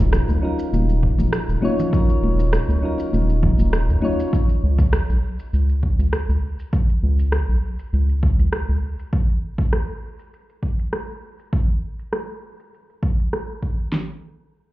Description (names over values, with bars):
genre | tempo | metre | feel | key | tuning
sunset chillout | 100 BPM | 4/4 | straight | Eb minor | A4 = 443 Hz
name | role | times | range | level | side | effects
soft electric-piano-like synth keys | accompaniment | 0.0-4.3 s | Gb3 to Db5 | -24 LUFS | left 1 dB | chorus, auto-pan, digital delay
round analog bass | bass | 0.0-8.8 s | Eb1 to Eb2 | -18 LUFS | equal | none
electronic rim click and shaker | drums | 0.1-13.9 s | none | -28 LUFS | right 1 dB | overdrive, low-pass filter on perc, low-pass filter on snare
congas and bongos | percussion | 0.3-4.1 s | none | -27 LUFS | left 2 dB | none
deep house drum kit | drums | 1.0-14.1 s | kick drum, snare drum | -20 LUFS | equal | overdrive
room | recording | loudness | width
light reverb, digital ambience | heard muffled through a wall, club reverb, EQ | -18 LUFS | side -16 dB against mid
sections
0.0-13.9 A section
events
filter sweep on drum 0.0-13.9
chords
0.0 Ebm9; 4.3 N.C.